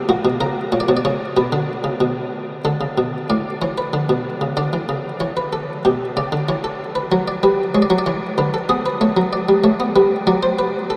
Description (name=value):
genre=classical, baroque-style two-part invention for harpsichord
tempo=94 BPM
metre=4/4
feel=straight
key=E minor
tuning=A4 = 440 Hz
part: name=buff-stop harpsichord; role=solo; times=0.1-11.0 s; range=A2 to D5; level=-19 LUFS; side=equal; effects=none
room=wet huge ambient reverb, RT60 7.2 s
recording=in a vast, echoing space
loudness=-19 LUFS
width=mono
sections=0.0-2.6 A section; 2.6-11.0 B section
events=none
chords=0.1 F#/A#; 1.4 Bm; 2.6 D5; 3.9 Bm; 5.2 Em; 6.5 C#dim/E; 7.7 E7; 9.0 A; 10.3 D7/F#